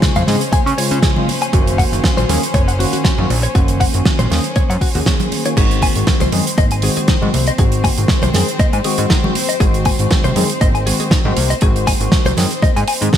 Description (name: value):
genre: nu-disco, nu disco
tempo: 119 BPM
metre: 4/4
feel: swing 54% on 16ths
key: Ab mixolydian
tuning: A4 = 439 Hz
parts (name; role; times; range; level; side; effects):
- tine electric piano; accompaniment; 0.0-13.2 s; Db3 to Ab4; -21 LUFS; left 1 dB; lush chorus, sidechain pumping, ping-pong delay
- warm chamber string section; sustained chords; 0.0-13.2 s; C4 to C5; -24 LUFS; left 3 dB; sidechain pumping
- damped 70s drum kit; drums; 0.0-13.2 s; crash cymbal, hi-hat, snare drum; -20 LUFS; right 2 dB; studio ambience, gated reverb
- electronic kick drum; drums; 0.0-13.2 s; none; -16 LUFS; equal; overdrive, studio ambience
- direct-recorded clean electric guitar; riff; 0.2-13.2 s; Db4 to Db6; -23 LUFS; left 3 dB; wide subtle chorus, ping-pong delay
- fat analog bass; bass; 0.2-13.1 s; Gb1 to Db3; -18 LUFS; equal; none
- congas; percussion; 0.2-13.1 s; none; -26 LUFS; right 1 dB; none
room: light reverb, small room ambience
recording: bright 1980s-style digital production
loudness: -12 LUFS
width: side -10 dB against mid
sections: 0.0-13.2 A section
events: none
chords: 0.0 Dbmaj7; 1.5 Gb6; 5.6 Ab7